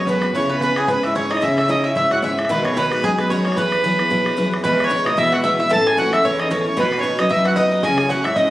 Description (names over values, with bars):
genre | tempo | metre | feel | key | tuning
celtic folk, Celtic reel | 224 BPM | 4/4 | swing 56% on 8ths | E major | A4 = 442 Hz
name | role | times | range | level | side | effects
accordion | melody | 0.0-8.5 s | G#4 to A5 | -19 LUFS | right 1 dB | plate reverb
bluegrass banjo | second line | 0.0-8.5 s | G#4 to A5 | -27 LUFS | right 1 dB | none
oud | second line | 0.0-8.5 s | G#3 to A4 | -26 LUFS | left 2 dB | none
picked steel-string acoustic guitar | accompaniment | 0.0-8.5 s | A2 to C#5 | -23 LUFS | equal | none
warm cello | bass | 0.0-8.5 s | E2 to C#3 | -24 LUFS | equal | none
bodhran | percussion | 0.1-8.4 s | none | -29 LUFS | equal | none
room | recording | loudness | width
moderate studio reverb, RT60 0.6 s | recorded on a phone in the room, club reverb | -16 LUFS | side -15 dB against mid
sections
0.0-4.6 A section; 4.6-8.5 B section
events
none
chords
0.3 C#m; 2.5 B6; 3.6 Eadd9; 4.6 E; 5.7 A; 6.8 B; 7.8 C#m